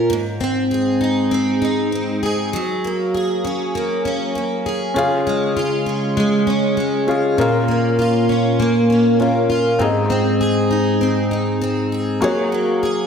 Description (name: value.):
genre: acoustic pop.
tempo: 99 BPM.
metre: 4/4.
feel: swing 60% on 16ths.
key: unclear.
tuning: A4 = 440 Hz.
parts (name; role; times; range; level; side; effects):
picked plugged-in steel-string acoustic guitar; accompaniment; 0.0-13.1 s; Ab2 to Bb4; -17 LUFS; equal; double-tracked left and right.
felt-muted upright piano; accompaniment; 4.9-13.1 s; Bb3 to F5; -21 LUFS; left 2 dB; none.
room: wet lush hall reverb, RT60 1.7 s, small room reverb.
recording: dreamy mix soaked in reverb.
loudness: -16 LUFS.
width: side -6 dB against mid.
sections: 0.0-13.1 A section.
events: none.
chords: 0.1 Ab; 2.5 Gbadd9; 5.0 Db; 7.4 Bbm; 9.8 Ab; 12.2 Gbadd9.